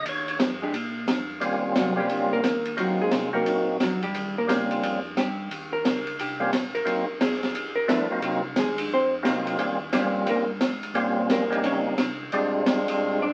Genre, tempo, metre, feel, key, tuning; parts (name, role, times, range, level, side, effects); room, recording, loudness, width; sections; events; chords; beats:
soul jazz organ trio; 176 BPM; 4/4; swing 65% on 8ths; Eb mixolydian; A4 = 441 Hz
percussive tonewheel organ; melody; 0.0-13.3 s; F3 to Db5; -28 LUFS; equal; slow rotary speaker, overdrive
mellow tonewheel organ; bass; 0.0-13.3 s; F1 to Bb2; -43 LUFS; equal; slow rotary speaker
open jazz drum kit; drums; 0.1-12.9 s; hi-hat, ride cymbal, snare drum; -30 LUFS; equal
hollow-body jazz guitar; accompaniment; 0.6-13.3 s; Gb3 to D5; -30 LUFS; equal
moderate studio reverb, RT60 0.6 s; very old 78 rpm record, vinyl crackle; -25 LUFS; mono
0.0-1.4 A section; 1.4-13.3 A section
tonewheel organ solo 0.0-1.4; hollow-body jazz guitar solo 1.4-13.3
0.1 Eb9; 0.7 Bb5; 1.4 Eb13; 2.8 Ab13; 4.1 Eb13; 6.9 Ab13; 9.6 Eb13; 12.3 Bb13
| 0.05 0.40 0.74 1.08 | 1.42 1.76 2.10 2.44 | 2.78 3.12 3.46 3.80 | 4.14 4.48 4.82 5.16 | 5.50 5.84 6.18 6.52 | 6.86 7.20 7.54 7.88 | 8.22 8.56 8.90 9.24 | 9.59 9.93 10.27 10.61 | 10.95 11.29 11.63 11.97 | 12.31 12.65 13.00